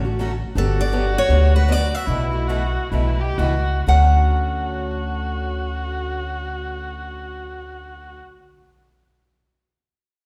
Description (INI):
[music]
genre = acoustic string swing (jazz manouche)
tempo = 116-165 BPM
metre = 4/4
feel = swing 61% on 8ths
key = D major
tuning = A4 = 440 Hz
[part]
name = picked steel-string acoustic guitar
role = melody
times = 0.0-8.2 s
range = A4 to F#5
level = -25 LUFS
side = equal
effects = none
[part]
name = picked acoustic archtop guitar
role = accompaniment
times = 0.0-8.2 s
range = B2 to G4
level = -34 LUFS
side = equal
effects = none
[part]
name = picked steel-string acoustic guitar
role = accompaniment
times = 0.0-8.2 s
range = B2 to B4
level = -34 LUFS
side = equal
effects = none
[part]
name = upright bass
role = bass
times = 0.0-8.2 s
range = G1 to D2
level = -23 LUFS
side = equal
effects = none
[part]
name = warm violin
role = second line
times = 0.6-8.2 s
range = E4 to G4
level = -31 LUFS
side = equal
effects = none
[sound]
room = wet recital hall reverb, RT60 1.5 s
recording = recorded in a church or concert hall, faint mains hum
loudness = -20 LUFS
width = mono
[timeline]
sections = 0.6-3.9 A section; 3.9-8.0 B section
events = slowing down 0.6-3.9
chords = 0.0 Dmaj7; 0.6 Gmaj7; 2.1 B7sus4; 3.9 Dmaj7